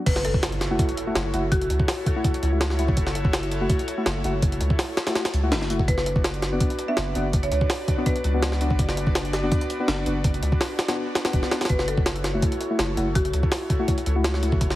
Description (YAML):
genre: drum and bass, jungle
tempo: 165 BPM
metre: 4/4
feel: straight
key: F# minor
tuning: A4 = 445 Hz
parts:
  - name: marimba with hard mallets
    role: melody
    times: 0.1-2.0, 5.9-8.4, 11.7-13.7 s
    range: F#4 to E5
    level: -32 LUFS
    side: equal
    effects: vintage 12-bit sampler grit, dub echo
  - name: airy breathy pad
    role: sustained chords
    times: 0.1-14.8 s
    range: D4 to D5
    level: -32 LUFS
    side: equal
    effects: chorus
  - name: soft dub sub bass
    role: bass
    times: 0.1-14.8 s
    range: E1 to C#2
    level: -26 LUFS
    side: equal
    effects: none
  - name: jungle sampler-style drum kit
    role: drums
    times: 0.1-14.8 s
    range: crash cymbal, hi-hat, kick drum, snare drum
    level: -24 LUFS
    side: equal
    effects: none
  - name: impact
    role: sound effects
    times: 0.1-1.5 s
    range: none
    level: -37 LUFS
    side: equal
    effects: none
  - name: deep mellow chord stab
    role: stabs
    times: 0.7-14.5 s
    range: A3 to F#4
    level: -29 LUFS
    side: left 2 dB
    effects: chorus, dub echo
room: light reverb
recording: heavily compressed radio sound, multiband compression, vinyl crackle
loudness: -21 LUFS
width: side -15 dB against mid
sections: 0.1-14.8 A section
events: drop 0.1-14.8; impact 0.1-1.5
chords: 0.1 F#m7; 5.9 Bm/F#; 11.7 F#m7